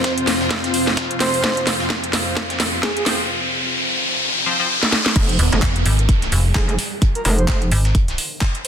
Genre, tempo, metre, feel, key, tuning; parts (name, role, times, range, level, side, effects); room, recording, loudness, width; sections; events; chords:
bass house; 129 BPM; 4/4; swing 58% on 16ths; F minor; A4 = 439 Hz
breathy flute-like synth lead; melody; 0.0-3.0, 6.6-8.7 s; Ab4 to C5; -27 LUFS; right 2 dB; chorus, tape echo
clear symphonic string section; sustained chords; 0.0-3.3 s; F2 to F4; -28 LUFS; left 1 dB; sidechain pumping, low-pass filter
dusty soul sampler-style drum kit; drums; 0.0-8.7 s; hi-hat, snare drum; -30 LUFS; right 1 dB; high-pass filter on hats, high-pass filter on snare, high-pass filter on room
electronic kick drum; drums; 0.0-8.5 s; -18 LUFS; equal; high-pass filter on kick
garage drum kit; drums; 0.0-8.7 s; crash cymbal, handclaps, hi-hat, snare drum; -21 LUFS; right 1 dB; soft clipping on snare
riser and downlifter; sound effects; 0.2-8.7 s; -24 LUFS; left 1 dB
granular cloud pad; texture; 0.0-3.3 s; C4 to F5; -25 LUFS; left 1 dB; built-in reverb, sidechain pumping
band-passed chord stab; stabs; 1.2-4.7 s; F3 to C5; -26 LUFS; left 1 dB; chorus, sidechain pumping, tape echo
metallic wobble bass; bass; 5.2-7.7 s; F1; -18 LUFS; equal; chorus, overdrive, sidechain pumping
metallic FM bass; bass; 5.4-8.2 s; Eb1 to Ab1; -17 LUFS; equal; sidechain pumping
moderate digital room reverb, RT60 0.9 s; dense, heavily limited modern master; -16 LUFS; side -8 dB against mid
0.0-5.2 A section; 5.2-8.7 B section
build-up 0.0-5.2; drum fill 0.0-3.3, 4.8-5.2; filter sweep on string section 0.0-5.2; riser 0.2-5.2; drop 5.2-8.7
0.0 F5